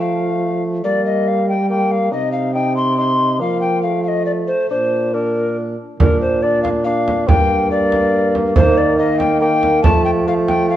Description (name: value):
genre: classical, renaissance-style consort dance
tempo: 141 BPM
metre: 3/4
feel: straight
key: Bb major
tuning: A4 = 438 Hz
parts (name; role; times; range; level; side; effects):
- mellow hollow alto recorder; melody; 0.0-10.8 s; Bb4 to C6; -18 LUFS; left 2 dB; none
- mellow bassoon; accompaniment; 0.0-10.8 s; A3 to Eb4; -21 LUFS; left 1 dB; none
- mellow trombone; bass; 0.0-10.8 s; G2 to G3; -20 LUFS; right 2 dB; none
- frame drum; percussion; 6.0-10.7 s; none; -17 LUFS; right 2 dB; none
room: moderate recital hall reverb, RT60 1.4 s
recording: dark, warm production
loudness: -14 LUFS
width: side -12 dB against mid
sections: 0.0-6.0 A section; 6.0-10.8 A section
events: none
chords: 0.0 F; 0.8 Gm; 2.1 Cm; 3.4 Fsus4; 3.8 F; 4.7 Bb; 7.3 Gm; 8.6 Eb; 9.8 F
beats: 0.00 0.42 | 0.85 1.27 1.70 | 2.12 2.55 2.98 | 3.40 3.83 4.26 | 4.70 5.13 5.56 | 5.99 6.42 6.85 | 7.28 7.71 8.14 | 8.57 8.99 9.42 | 9.84 10.27 10.69